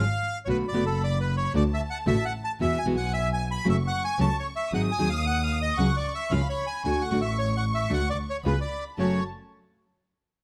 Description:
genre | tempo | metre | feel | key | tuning
tango | 113 BPM | 4/4 | rubato | F# minor | A4 = 440 Hz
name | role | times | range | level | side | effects
bandoneon | melody | 0.0-9.2 s | A4 to B5 | -32 LUFS | equal | none
nylon-string guitar | accompaniment | 0.0-9.2 s | F#2 to G#4 | -29 LUFS | equal | none
warm double bass | bass | 0.0-9.2 s | F#1 to E2 | -30 LUFS | equal | none
dark studio violin section | second line | 0.5-9.2 s | G#5 to D#6 | -38 LUFS | equal | none
room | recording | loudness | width
light reverb | none | -26 LUFS | mono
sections
0.0-9.0 A section; 9.0-10.4 B section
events
none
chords
0.5 Bm7; 1.5 D; 2.6 Eadd9; 3.7 F#m; 4.7 G#7; 5.8 C#sus4; 6.3 C#; 6.8 D; 8.4 C#7; 9.0 F#m

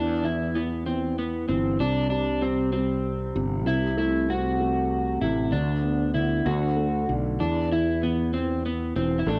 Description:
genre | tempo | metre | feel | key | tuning
six-eight pop ballad | 64 BPM (dotted quarters) | 6/8 | straight | unclear | A4 = 439 Hz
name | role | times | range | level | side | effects
electric slide guitar | melody | 0.0-9.4 s | B3 to F#4 | -30 LUFS | equal | cassette tape
warm upright piano | accompaniment | 0.0-9.4 s | C3 to D4 | -30 LUFS | equal | cassette tape
fretless electric bass | bass | 0.0-9.4 s | E1 to E2 | -30 LUFS | equal | none
room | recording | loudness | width
light reverb, small room ambience | home recording on cassette | -25 LUFS | mono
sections
0.0-9.4 A section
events
none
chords
0.0 Em; 1.8 C5; 3.7 Am/C; 5.5 Bmadd11/D; 6.5 D; 7.4 Cmaj7/E

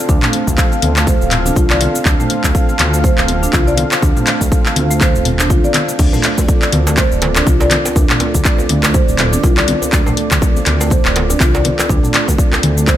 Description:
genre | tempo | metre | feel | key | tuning
afro house | 122 BPM | 4/4 | swing 57% on 16ths | D minor | A4 = 439 Hz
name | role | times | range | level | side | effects
dark analog pad | sustained chords | 0.0-13.0 s | C4 to F5 | -22 LUFS | right 1 dB | chorus, sidechain pumping
marimba with medium mallets | arpeggios | 0.1-13.0 s | A3 to D5 | -19 LUFS | right 1 dB | vintage 12-bit sampler grit, sidechain pumping, dub echo
smooth synth bass | bass | 0.1-12.9 s | D1 to D2 | -17 LUFS | equal | sidechain pumping
electronic kick drum | drums | 0.1-13.0 s | none | -14 LUFS | equal | none
house drum kit | drums | 0.1-13.0 s | crash cymbal, handclaps, hi-hat, shaker | -17 LUFS | left 1 dB | none
congas | percussion | 0.2-13.0 s | none | -22 LUFS | left 2 dB | none
djembe | percussion | 6.1-13.0 s | none | -25 LUFS | right 2 dB | none
room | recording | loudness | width
little or no reverb | none | -11 LUFS | side -12 dB against mid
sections
0.0-13.0 A section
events
none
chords
0.0 Dm7

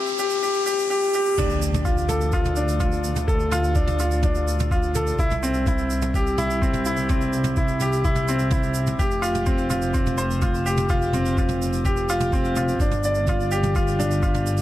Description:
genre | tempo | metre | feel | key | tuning
piano and strings electronica | 126 BPM | 4/4 | straight | D minor | A4 = 442 Hz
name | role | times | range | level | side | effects
bright upright piano | riff | 0.0-14.6 s | C4 to D5 | -23 LUFS | equal | ping-pong delay
riser and impact | sound effects | 0.0-3.3 s | none | -30 LUFS | equal | none
jazz brush drum kit | drums | 0.1-14.6 s | crash cymbal, shaker, toms | -31 LUFS | right 2 dB | none
dark studio double bass section | bass | 1.4-14.6 s | F1 to D2 | -25 LUFS | equal | sidechain pumping
electronic kick drum | drums | 1.4-14.3 s | none | -23 LUFS | equal | none
room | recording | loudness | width
light reverb, small room ambience | none | -20 LUFS | side -14 dB against mid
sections
0.0-1.4 A section; 1.4-14.6 B section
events
build-up 0.0-1.4; riser 0.0-1.4; drop 1.4-14.6; impact 1.4-3.3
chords
0.0 C; 1.4 Dm; 5.2 C; 9.0 Fsus2; 12.8 G5

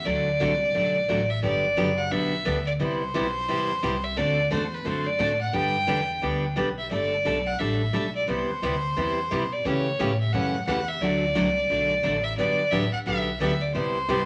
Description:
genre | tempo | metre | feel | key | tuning
country, western swing | 175 BPM | 4/4 | swing 62% on 8ths | G major | A4 = 438 Hz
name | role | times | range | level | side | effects
clear fiddle | melody | 0.0-14.3 s | B4 to G5 | -28 LUFS | equal | none
upright bass | bass | 0.0-14.3 s | F#1 to C#3 | -34 LUFS | equal | none
picked steel-string acoustic guitar | accompaniment | 0.1-14.2 s | C3 to A4 | -29 LUFS | equal | none
room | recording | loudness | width
wet studio reverb, RT60 0.8 s | none | -25 LUFS | mono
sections
0.0-6.9 A section; 6.9-14.3 A section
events
none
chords
0.1 D; 1.4 Gmaj7; 2.8 Cmaj7; 4.2 D7; 5.5 G; 6.9 Gsus2; 8.3 Cmaj7; 9.7 A7; 11.0 D; 12.4 Gmaj7; 13.8 Cmaj7

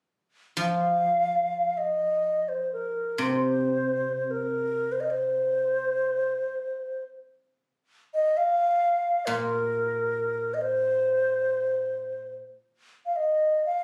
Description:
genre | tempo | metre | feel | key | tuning
chinese traditional, Chinese chamber ensemble | free time | none | none | C yu mode | A4 = 438 Hz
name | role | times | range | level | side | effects
xiao | melody | 0.6-13.8 s | Bb4 to F5 | -27 LUFS | equal | none
guzheng | accompaniment | 0.6-12.4 s | Bb2 to F3 | -34 LUFS | equal | none
room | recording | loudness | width
light reverb | recorded on a phone in the room, studio reverb | -27 LUFS | mono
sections
0.0-13.8 A section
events
none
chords
none

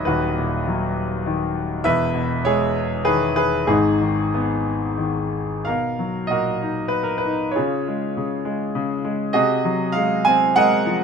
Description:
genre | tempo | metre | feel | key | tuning
classical, lyrical solo piano | 90-104 BPM | 3/4 | rubato | G# minor | A4 = 441 Hz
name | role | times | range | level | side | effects
clear concert grand piano | solo | 0.0-11.0 s | D#1 to Ab5 | -19 LUFS | equal | none
room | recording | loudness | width
light reverb | minimal, uncompressed stereo recording | -19 LUFS | side -6 dB against mid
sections
0.0-5.7 A section; 5.7-11.0 B section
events
none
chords
0.0 Bmaj7/D#; 1.8 Emaj7; 3.7 G#m; 5.7 Bmaj7; 7.6 Db; 9.4 Ab13/C

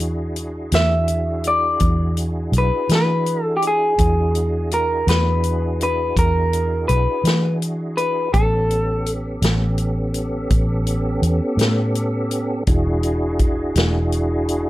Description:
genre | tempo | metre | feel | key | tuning
slow blues | 55 BPM (dotted quarters) | 12/8 | straight | E mixolydian | A4 = 441 Hz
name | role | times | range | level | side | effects
tonewheel organ | sustained chords | 0.0-14.7 s | B3 to A4 | -25 LUFS | right 1 dB | slow rotary speaker, chorus vibrato
vintage muted fingered electric bass | bass | 0.0-14.7 s | E1 to E3 | -20 LUFS | equal | none
swinging big-band drum kit | drums | 0.0-14.7 s | hi-hat, kick drum, snare drum | -22 LUFS | equal | none
electric guitar through a small old amp | melody | 0.7-9.1 s | G4 to E5 | -20 LUFS | equal | none
room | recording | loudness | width
light reverb | none | -17 LUFS | side -16 dB against mid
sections
0.0-14.7 A section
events
none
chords
0.0 E9; 8.3 A9; 12.7 E9

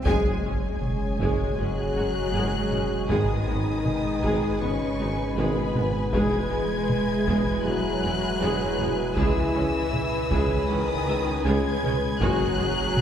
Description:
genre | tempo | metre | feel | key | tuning
cinematic, hybrid orchestral and electronic film score | 79 BPM | 4/4 | straight | unclear | A4 = 440 Hz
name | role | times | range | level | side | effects
analog drone | sustained chords | 0.0-13.0 s | G#3 to C#5 | -32 LUFS | equal | chorus
punchy sub bass | bass | 0.0-13.0 s | E1 to C#2 | -35 LUFS | equal | none
swell and sub drop | sound effects | 0.0-3.1 s | none | -34 LUFS | equal | none
rich symphonic violin section | melody | 0.1-13.0 s | B5 to G#6 | -34 LUFS | left 4 dB | none
rich studio violin section | second line | 0.1-13.0 s | G#4 to G#5 | -33 LUFS | left 2 dB | none
clear symphonic viola section | accompaniment | 0.1-12.7 s | G#3 to E5 | -31 LUFS | right 1 dB | none
mellow French horn section | sustained chords | 0.1-13.0 s | D#3 to G#4 | -31 LUFS | left 3 dB | none
rich chamber double bass section | bass | 0.1-12.7 s | F#1 to E2 | -32 LUFS | right 2 dB | none
rich symphonic cello section | bass | 0.1-13.0 s | B2 to G#3 | -32 LUFS | right 2 dB | none
warm tuba | bass | 0.1-12.7 s | E1 to C#2 | -32 LUFS | right 2 dB | none
taiko ensemble | drums | 0.1-13.0 s | none | -31 LUFS | equal | none
room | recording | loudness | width
wet church reverb, RT60 2.6 s | recorded in a church or concert hall | -22 LUFS | side -9 dB against mid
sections
0.1-13.0 A section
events
band accent 0.1-0.8; impact 0.1-3.1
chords
0.1 F#sus2; 3.1 G#m; 6.1 E; 9.2 C#m7; 12.2 F#sus2

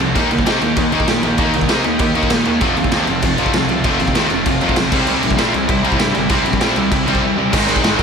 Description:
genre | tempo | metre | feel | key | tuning
punk rock | 195 BPM | 4/4 | straight | unclear | A4 = 441 Hz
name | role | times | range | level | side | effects
distorted electric guitar | riff | 0.0-8.0 s | F2 to Eb4 | -20 LUFS | left 12 dB | overdrive
tight distorted guitar | riff | 0.0-8.0 s | F2 to Eb4 | -20 LUFS | right 13 dB | distortion
tight distorted guitar | riff | 0.0-8.0 s | Ab2 to G4 | -20 LUFS | right 1 dB | distortion
fuzz picked electric bass | bass | 0.0-8.0 s | F1 to C3 | -23 LUFS | equal | overdrive
raw garage drum kit | drums | 0.0-8.0 s | crash cymbal, kick drum, snare drum | -19 LUFS | equal | none
room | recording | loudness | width
light reverb | none | -13 LUFS | side -6 dB against mid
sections
0.0-7.5 A section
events
none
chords
0.2 Eb; 2.6 F; 4.9 C

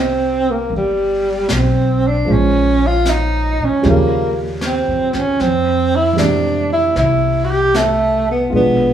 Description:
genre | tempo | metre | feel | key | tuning
jazz ballad | 77 BPM | 4/4 | swing 69% on 8ths | unclear | A4 = 440 Hz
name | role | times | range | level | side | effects
breathy tenor saxophone | melody | 0.0-8.9 s | G3 to G4 | -15 LUFS | right 1 dB | none
dark baby grand piano | accompaniment | 0.0-8.9 s | Cb3 to D5 | -20 LUFS | right 2 dB | none
upright bass | bass | 0.0-8.9 s | G1 to Bb2 | -20 LUFS | left 1 dB | none
vintage brush drum kit | drums | 0.7-8.9 s | brushed snare drum, hi-hat, snare drum | -26 LUFS | left 1 dB | none
room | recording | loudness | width
light reverb | band playing live in one room, small room ambience | -13 LUFS | side -9 dB against mid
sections
0.0-8.9 A section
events
none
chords
0.0 Cm9; 2.3 Bbm7; 3.8 Eb9; 5.4 Fmaj9

